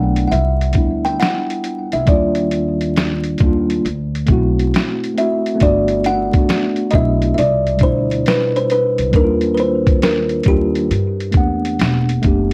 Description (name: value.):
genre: lo-fi hip hop.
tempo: 68 BPM.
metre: 4/4.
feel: swing 66% on 16ths.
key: G major.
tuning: A4 = 439 Hz.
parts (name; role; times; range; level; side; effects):
kalimba; melody; 0.0-12.2 s; G4 to G5; -22 LUFS; equal; none.
mellow tine electric piano; accompaniment; 0.0-12.5 s; B2 to F#5; -21 LUFS; equal; cassette tape.
upright bass; bass; 0.0-12.5 s; E1 to G2; -23 LUFS; equal; none.
boom bap sampler-style drum kit; drums; 0.2-12.5 s; hi-hat, kick drum, snare drum; -20 LUFS; equal; none.
room: moderate studio reverb, RT60 0.6 s.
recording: worn, warbling old tape, cassette tape, vinyl crackle, warbly pitch drift.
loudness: -16 LUFS.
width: mono.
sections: 0.0-12.5 A section.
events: none.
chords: 0.3 Cmaj9; 2.1 Ebmaj9; 3.8 D9; 5.6 Gmaj9; 7.4 Cmaj9; 9.1 Ebmaj9; 10.9 Gmaj9.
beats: 0.31 1.20 | 2.08 2.96 3.84 4.72 | 5.61 6.49 7.37 8.25 | 9.14 10.02 10.90 11.78.